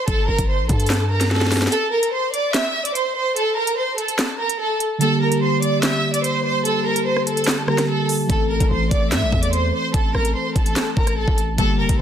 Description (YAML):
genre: hip hop, drill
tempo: 146 BPM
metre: 4/4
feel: half-time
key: A phrygian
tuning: A4 = 438 Hz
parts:
  - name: warm studio violin section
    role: melody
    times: 0.0-12.0 s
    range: A4 to E6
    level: -21 LUFS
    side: right 1 dB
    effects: digital delay
  - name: hard-hitting 808-style bass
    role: bass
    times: 0.1-1.7, 8.3-12.0 s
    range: F1 to A2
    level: -22 LUFS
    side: equal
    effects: none
  - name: drill drum kit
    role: drums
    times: 0.1-12.0 s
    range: handclaps, hi-hat, kick drum, rim click, snare drum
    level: -21 LUFS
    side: equal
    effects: none
  - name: muted felt-like synth keys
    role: accompaniment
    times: 5.0-12.0 s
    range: D3 to A4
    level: -22 LUFS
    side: equal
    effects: chorus
room: light reverb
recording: dense, heavily limited modern master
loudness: -17 LUFS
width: side -9 dB against mid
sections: 0.0-12.0 A section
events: drum fill 1.3-1.7; kick muted 1.7-8.3; break 1.7-5.0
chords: 0.0 Gm; 1.7 Am; 5.0 Gm; 8.3 Am